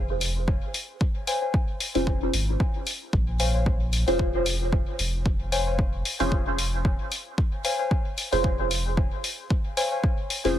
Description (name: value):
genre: dub techno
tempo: 113 BPM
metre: 4/4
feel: swing 56% on 16ths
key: Bb minor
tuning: A4 = 435 Hz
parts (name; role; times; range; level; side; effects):
- deep mellow chord stab; stabs; 0.0-10.6 s; Db4 to C5; -28 LUFS; right 1 dB; chorus, phaser, sidechain pumping, dub echo
- soft dub sub bass; bass; 0.0-10.6 s; F1 to Bb1; -27 LUFS; equal; tube saturation, sidechain pumping
- electronic hi-hat; drums; 0.2-10.5 s; none; -30 LUFS; left 2 dB; overdrive
- electronic kick drum; drums; 0.5-10.2 s; none; -25 LUFS; equal; overdrive
- warbly dusty pluck; riff; 1.3-10.0 s; C5 to Ab5; -32 LUFS; left 3 dB; wide subtle chorus, sidechain pumping, dub echo
room: little or no reverb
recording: echo-heavy mix, lossy compression artefacts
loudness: -23 LUFS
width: side -11 dB against mid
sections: 0.0-10.6 A section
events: filter sweep on synth stab 0.0-10.6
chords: 0.0 Bbm9 (rootless)